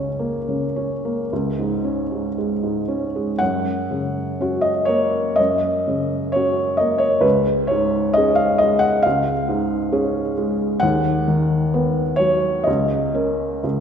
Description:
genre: classical, romantic nocturne for solo piano.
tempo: 53-69 BPM.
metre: 4/4.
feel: rubato.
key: F# major.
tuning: A4 = 440 Hz.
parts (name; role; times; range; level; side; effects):
felt-muted upright piano; solo; 0.0-13.8 s; C#2 to F#5; -18 LUFS; equal; none.
room: wet concert hall reverb, RT60 1.9 s.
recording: none.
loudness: -18 LUFS.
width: side -8 dB against mid.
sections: 0.0-3.4 A section; 3.4-13.8 B section.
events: none.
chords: 0.0 A#m/C#; 1.3 C#5; 3.4 F#; 7.2 C#; 10.8 B/D#; 12.7 A#madd11/C#.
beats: 0.20 1.31 2.37 | 3.40 4.39 5.38 6.32 | 7.24 8.16 9.05 9.93 | 10.83 11.74 12.68 13.64.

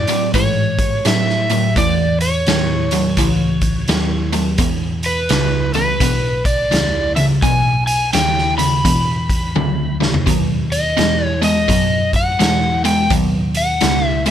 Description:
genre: blues rock power trio and southern rock.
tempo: 85 BPM.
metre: 4/4.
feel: swing 63% on 8ths.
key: E major.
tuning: A4 = 440 Hz.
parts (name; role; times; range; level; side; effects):
overdriven slide guitar; melody; 0.0-14.3 s; B4 to B5; -19 LUFS; equal; none.
overdriven semi-hollow guitar; riff; 0.0-14.3 s; E2 to G#3; -19 LUFS; equal; none.
hollow-body short-scale picked electric bass; bass; 0.0-14.3 s; B1 to A2; -21 LUFS; equal; none.
raw garage drum kit; drums; 0.1-14.3 s; hi-hat, kick drum, snare drum, toms; -20 LUFS; equal; none.
room: little or no reverb.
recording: none.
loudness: -14 LUFS.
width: side -10 dB against mid.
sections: 0.0-14.3 A section.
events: drum fill 9.6-10.3.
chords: 0.0 A; 4.6 E5; 10.3 B.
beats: 0.35 1.06 | 1.76 2.47 3.18 3.89 | 4.60 5.31 6.01 6.72 | 7.43 8.14 8.85 9.56 | 10.27 10.98 11.69 12.40 | 13.11 13.82.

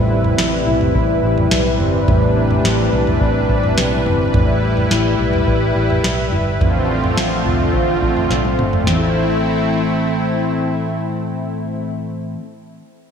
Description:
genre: dream pop.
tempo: 106 BPM.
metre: 4/4.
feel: straight.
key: A minor.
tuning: A4 = 438 Hz.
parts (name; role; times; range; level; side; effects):
lush unison pad; sustained chords; 0.0-11.9 s; C3 to B4; -19 LUFS; right 1 dB; chorus.
mellow electric guitar; arpeggios; 0.0-12.5 s; A2 to C5; -20 LUFS; left 3 dB; lush chorus, digital delay.
vintage muted fingered electric bass; bass; 0.0-12.4 s; G1 to C2; -22 LUFS; equal; none.
booming analog drum machine; drums; 0.2-9.0 s; kick drum, snare drum, toms; -20 LUFS; right 1 dB; gated reverb.
room: moderate plate reverb, RT60 2.6 s.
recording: bright 1980s-style digital production.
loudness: -14 LUFS.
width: side -7 dB against mid.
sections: 0.0-8.9 A section; 8.9-11.1 B section.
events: drum fill 8.3-8.9.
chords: 0.0 Cmaj7; 4.3 Em/A; 6.6 Dm7/A; 8.9 Am.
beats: 0.38 0.95 1.51 | 2.08 2.64 3.21 3.78 | 4.34 4.91 5.47 6.04 | 6.61 7.17 7.74 8.30 | 8.87 9.44 10.00 10.57.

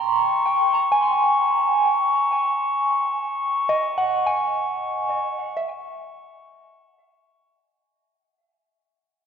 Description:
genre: ambient.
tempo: 64 BPM.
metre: 4/4.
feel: straight.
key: unclear.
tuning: A4 = 440 Hz.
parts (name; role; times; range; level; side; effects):
soft synth bell; arpeggios; 0.0-7.9 s; Eb5 to C6; -22 LUFS; right 2 dB; chorus, phaser, tape echo.
glass harmonica; texture; 0.0-7.5 s; Db6; -23 LUFS; left 3 dB; none.
room: wet concert hall reverb, RT60 2.2 s.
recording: worn, warbling old tape, cassette tape, warbly pitch drift.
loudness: -19 LUFS.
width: side -7 dB against mid.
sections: 0.0-7.5 A section.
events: fade-out 2.5-7.5.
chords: 0.0 Dbmadd9.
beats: | 0.00 0.92 1.85 2.78 | 3.71 4.64 5.57 6.52.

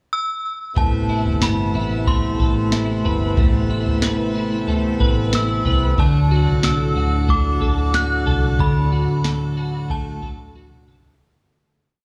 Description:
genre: dream pop.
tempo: 92 BPM.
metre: 4/4.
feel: straight.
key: A dorian.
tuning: A4 = 435 Hz.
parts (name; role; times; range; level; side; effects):
synth chime; melody; 0.1-10.8 s; A5 to F#6; -28 LUFS; equal; ensemble chorus, phaser, tape echo.
pipe organ, plenum; sustained chords; 0.8-11.2 s; A2 to F#4; -27 LUFS; equal; none.
twelve-string electric guitar; arpeggios; 0.8-11.8 s; A2 to B4; -26 LUFS; equal; ensemble chorus, tape echo.
vintage muted fingered electric bass; bass; 0.8-11.2 s; G1 to D2; -24 LUFS; equal; none.
soft vintage rhythm box; drums; 0.8-11.2 s; kick drum, snare drum, toms; -24 LUFS; equal; none.
room: light reverb, digital ambience.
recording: small room reverb.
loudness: -19 LUFS.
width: mono.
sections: 0.0-0.8 pickup bar; 0.8-11.2 verse.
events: fade-out 8.6-11.2; drum fill 10.5-11.2.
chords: 0.0 N.C.; 0.8 Amadd9; 6.0 D.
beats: 0.11 | 0.77 1.42 2.07 2.72 | 3.37 4.03 4.68 5.33 | 5.98 6.63 7.29 7.94 | 8.59 9.24 9.90 10.55.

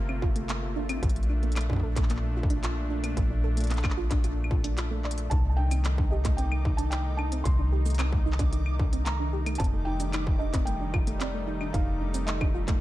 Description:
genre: IDM.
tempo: 112 BPM.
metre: 4/4.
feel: straight.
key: C dorian.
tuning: A4 = 440 Hz.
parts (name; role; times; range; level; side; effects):
warm analog pad; sustained chords; 0.0-12.8 s; Bb2 to F4; -36 LUFS; equal; chorus.
soft round pluck; arpeggios; 0.0-12.7 s; A3 to D5; -36 LUFS; right 3 dB; chorus, ping-pong delay.
metallic FM bass; bass; 0.0-12.8 s; F1 to C2; -28 LUFS; equal; tube saturation.
industrial drum kit; drums; 0.1-12.8 s; cabasa, claves, handclaps, hi-hat; -37 LUFS; equal; studio reverb, digital delay.
electronic kick drum; drums; 0.2-12.8 s; none; -27 LUFS; equal; distortion, studio reverb.
felt-muted upright piano; melody; 5.3-12.8 s; D5 to C6; -38 LUFS; right 2 dB; tape echo.
backwards swelling texture; texture; 6.2-12.8 s; Eb4 to D6; -46 LUFS; right 1 dB; built-in reverb, sidechain pumping.
room: digital ambience.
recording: dark, warm production.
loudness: -25 LUFS.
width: side -16 dB against mid.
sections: 0.0-12.8 A section.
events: drum fill 5.0.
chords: 0.0 Gm11; 1.0 Bbmaj7; 5.3 Cm69; 9.6 F13.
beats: 0.49 | 1.03 1.56 2.10 2.63 | 3.17 3.71 4.24 4.78 | 5.31 5.85 6.38 6.92 | 7.46 7.99 8.53 9.06 | 9.60 10.13 10.67 11.21 | 11.74 12.28.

